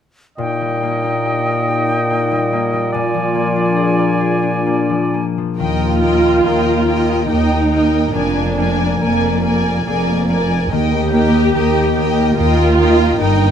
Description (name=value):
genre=classical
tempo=62-74 BPM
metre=3/4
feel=rubato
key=Eb major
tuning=A4 = 440 Hz
part: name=bright silver concert flute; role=second line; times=0.4-5.3 s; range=G5 to Ab5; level=-23 LUFS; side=equal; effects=none
part: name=clear oboe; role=second line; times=0.4-5.2 s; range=D5 to Eb5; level=-23 LUFS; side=right 2 dB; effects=none
part: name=warm clarinet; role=second line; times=0.4-5.2 s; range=Eb4 to F4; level=-25 LUFS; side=equal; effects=none
part: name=mellow bassoon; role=accompaniment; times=0.4-5.2 s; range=Bb2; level=-21 LUFS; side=right 3 dB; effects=none
part: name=concert harp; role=arpeggios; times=0.4-13.5 s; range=G2 to Bb4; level=-20 LUFS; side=left 8 dB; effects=none
part: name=warm symphonic violin section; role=melody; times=5.6-13.5 s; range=G5 to Ab5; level=-23 LUFS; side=left 1 dB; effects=none
part: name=warm studio violin section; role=second line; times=5.6-13.5 s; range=Bb4 to Eb5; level=-22 LUFS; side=left 1 dB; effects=none
part: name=dark studio viola section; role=accompaniment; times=5.6-13.5 s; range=Bb3 to G4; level=-17 LUFS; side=right 1 dB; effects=none
part: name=warm studio cello section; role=bass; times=5.6-13.5 s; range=Eb2 to G2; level=-19 LUFS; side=right 2 dB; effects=none
part: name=warm studio double bass section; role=bass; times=5.6-13.5 s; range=F1 to Eb2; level=-20 LUFS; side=right 3 dB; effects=none
room=wet recital hall reverb, RT60 1.6 s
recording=close, detailed microphones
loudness=-13 LUFS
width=side -8 dB against mid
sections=0.4-5.6 A section; 5.6-13.5 B section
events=none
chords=0.4 Eb/Bb; 2.9 Bb7; 5.6 Eb; 8.2 Bb7/F; 10.7 Eb